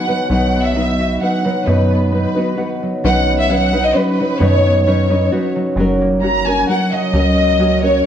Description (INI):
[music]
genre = mexican folk, mariachi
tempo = 132 BPM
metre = 3/4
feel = straight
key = B major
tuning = A4 = 442 Hz
[part]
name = rich studio violin section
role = melody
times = 0.0-8.1 s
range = B4 to A#5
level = -18 LUFS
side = equal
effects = none
[part]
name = nylon-string guitar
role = accompaniment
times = 0.0-8.0 s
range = B2 to B4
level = -18 LUFS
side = left 2 dB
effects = none
[part]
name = concert harp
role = arpeggios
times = 0.0-8.1 s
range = F#3 to F#5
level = -20 LUFS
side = right 3 dB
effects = none
[part]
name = metallic FM bass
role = bass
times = 0.3-8.0 s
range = F#1 to F#2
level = -18 LUFS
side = equal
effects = none
[sound]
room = moderate recital hall reverb, RT60 1.5 s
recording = worn, warbling old tape, cassette tape, warbly pitch drift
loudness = -13 LUFS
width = side -9 dB against mid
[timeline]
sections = 0.0-3.0 A section; 3.0-8.1 A section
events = break 2.6-3.0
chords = 0.0 B; 3.0 Badd9; 5.8 F#